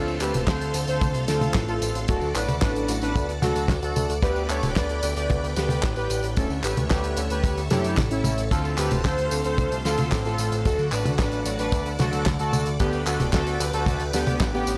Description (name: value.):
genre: italo disco.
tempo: 112 BPM.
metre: 4/4.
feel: straight.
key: D major.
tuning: A4 = 436 Hz.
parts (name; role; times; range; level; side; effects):
analog synth brass; melody; 0.0-14.8 s; B3 to D5; -30 LUFS; equal; chorus, tape echo.
string machine, full ensemble; sustained chords; 0.0-14.8 s; A4 to D6; -36 LUFS; equal; ensemble chorus.
bright electric grand piano; stabs; 0.0-14.8 s; D3 to B4; -36 LUFS; equal; none.
fat analog bass; bass; 0.0-14.8 s; D1 to F#2; -30 LUFS; equal; tube saturation.
damped 70s drum kit; drums; 0.1-14.8 s; handclaps, hi-hat, snare drum, tambourine, toms; -30 LUFS; equal; none.
kick drum; drums; 0.5-14.5 s; none; -27 LUFS; equal; none.
room: studio reverb.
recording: dry, gritty hardware recording, transformer saturation.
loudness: -24 LUFS.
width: mono.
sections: 0.0-14.8 A section.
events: none.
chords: 0.0 F/D; 2.1 D; 4.2 G/D; 6.4 A/D; 8.5 F/D; 10.7 D; 12.8 G/D.